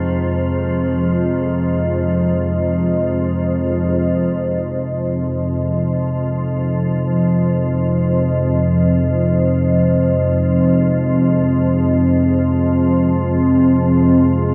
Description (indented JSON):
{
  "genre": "dark ambient drone",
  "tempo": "free time",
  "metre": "none",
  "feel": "none",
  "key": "unclear",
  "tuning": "A4 = 440 Hz",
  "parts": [
    { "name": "deep dark ambient pad", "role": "sustained chords", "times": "0.0-14.5 s", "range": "C4 to Eb5", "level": "-19 LUFS", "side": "equal", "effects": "chorus, built-in reverb" },
    { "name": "organ-like drone", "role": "drone", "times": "0.0-14.5 s", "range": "F2 to F3", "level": "-20 LUFS", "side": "equal", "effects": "ensemble chorus, built-in reverb" },
    { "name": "metallic inharmonic drone", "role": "texture", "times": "0.0-4.3 s", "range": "Eb4", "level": "-40 LUFS", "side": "equal", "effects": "chorus, built-in reverb" }
  ],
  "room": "wet cathedral reverb, RT60 5.0 s",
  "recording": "in a vast, echoing space, cassette tape",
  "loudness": "-17 LUFS",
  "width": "mono",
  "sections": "0.0-4.3 A section; 4.3-14.5 B section",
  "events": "none",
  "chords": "0.0 Fm7"
}